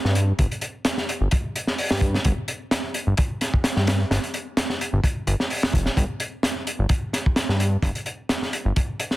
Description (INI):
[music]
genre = breakbeat, breaks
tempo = 129 BPM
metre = 4/4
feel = swing 53% on 16ths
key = unclear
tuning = A4 = 441 Hz
[part]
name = fat analog bass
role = bass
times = 0.0-8.7 s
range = F1 to G2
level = -21 LUFS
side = equal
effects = none
[part]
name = crunchy breakbeat drum kit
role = drums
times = 0.1-9.2 s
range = hi-hat, kick drum, snare drum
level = -22 LUFS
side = equal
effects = none
[sound]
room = little or no reverb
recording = dense, heavily limited modern master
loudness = -21 LUFS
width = side -17 dB against mid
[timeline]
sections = 0.0-9.2 A section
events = none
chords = none